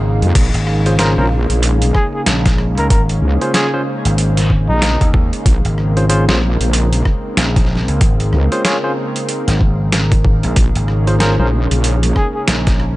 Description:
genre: glitch hop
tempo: 94 BPM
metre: 4/4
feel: swing 60% on 16ths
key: Bb minor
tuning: A4 = 441 Hz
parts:
  - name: warm analog pad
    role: sustained chords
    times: 0.0-13.0 s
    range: Db3 to Eb4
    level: -24 LUFS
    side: equal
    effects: chorus, vintage 12-bit sampler grit, sidechain pumping
  - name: vintage slap bass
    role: bass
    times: 0.0-13.0 s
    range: Ab1 to Eb2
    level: -16 LUFS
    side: equal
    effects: none
  - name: warbly tape-like pad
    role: texture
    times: 0.0-13.0 s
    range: Eb4 to F5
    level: -26 LUFS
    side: right 1 dB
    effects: chorus, built-in reverb, sidechain pumping
  - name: wobble bass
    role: bass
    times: 0.2-12.1 s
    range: Bb1 to F2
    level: -14 LUFS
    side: equal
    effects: chorus
  - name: boom bap sampler-style drum kit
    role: drums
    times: 0.2-12.9 s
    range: crash cymbal, hi-hat, rim click, snare drum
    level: -20 LUFS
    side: right 1 dB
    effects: overdrive
  - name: electronic kick drum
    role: drums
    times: 0.4-12.8 s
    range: none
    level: -14 LUFS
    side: equal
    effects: overdrive
  - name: barky tine electric piano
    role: stabs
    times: 0.9-11.5 s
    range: Db4 to Db5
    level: -21 LUFS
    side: equal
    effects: sidechain pumping, digital delay
  - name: breathy trumpet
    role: melody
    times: 1.0-5.1, 11.2-12.4 s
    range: Eb4 to Bb4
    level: -22 LUFS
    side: equal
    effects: digital delay
room: digital ambience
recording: nothing above 10.3 kHz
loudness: -12 LUFS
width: side -18 dB against mid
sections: 0.0-13.0 A section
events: break 0.0-0.4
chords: 0.0 Bbm9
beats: | 0.35 0.99 1.63 2.27 | 2.90 3.54 4.18 4.82 | 5.46 6.10 6.73 7.37 | 8.01 8.65 9.29 9.93 | 10.56 11.20 11.84 12.48

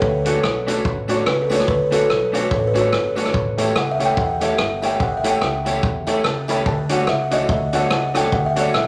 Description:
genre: ska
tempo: 144 BPM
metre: 4/4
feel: swing 58% on 8ths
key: D major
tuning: A4 = 439 Hz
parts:
  - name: buzzing kalimba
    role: melody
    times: 0.0-8.9 s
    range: A4 to B5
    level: -24 LUFS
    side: equal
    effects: none
  - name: upright bass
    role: bass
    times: 0.0-8.9 s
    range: G1 to E2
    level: -30 LUFS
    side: equal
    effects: none
  - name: vintage drum kit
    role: drums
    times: 0.0-8.9 s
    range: hi-hat, kick drum, rim click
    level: -26 LUFS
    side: equal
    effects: none
  - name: electric guitar at the edge of break-up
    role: accompaniment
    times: 0.2-8.7 s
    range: A3 to G4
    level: -29 LUFS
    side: equal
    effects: analog delay
  - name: clear upright piano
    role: stabs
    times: 0.3-8.7 s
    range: D4 to C#5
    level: -26 LUFS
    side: equal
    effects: none
  - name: tambourine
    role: percussion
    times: 0.3-8.6 s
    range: none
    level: -43 LUFS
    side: equal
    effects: none
room: wet large studio reverb, RT60 0.8 s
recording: none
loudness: -19 LUFS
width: mono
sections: 0.0-8.9 A section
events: kalimba solo 0.0-8.9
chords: 0.0 Dmaj7; 3.3 A7; 6.7 Dmaj7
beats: | 0.02 0.43 0.85 1.27 | 1.68 2.10 2.51 2.93 | 3.34 3.76 4.17 4.59 | 5.00 5.42 5.84 6.25 | 6.67 7.08 7.50 7.91 | 8.33 8.74

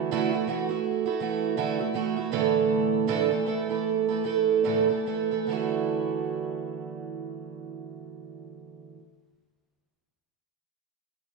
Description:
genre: pop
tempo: 71-84 BPM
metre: 4/4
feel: swing 60% on 16ths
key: D major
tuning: A4 = 440 Hz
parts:
  - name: fingerpicked twelve-string acoustic guitar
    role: accompaniment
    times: 0.0-9.0 s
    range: A2 to A4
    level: -25 LUFS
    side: right 6 dB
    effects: none
room: wet echo chamber reverb, RT60 1.5 s, small room ambience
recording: 1960s-style stereo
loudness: -24 LUFS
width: side -2 dB against mid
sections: 0.0-5.5 A section; 5.5-8.9 B section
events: slowing down 0.0-5.5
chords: 0.0 Dadd9; 2.3 Asus4; 5.5 Dadd9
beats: 0.11 0.83 1.56 | 2.31 3.07 3.85 4.66 | 5.48 6.33 7.17 8.01

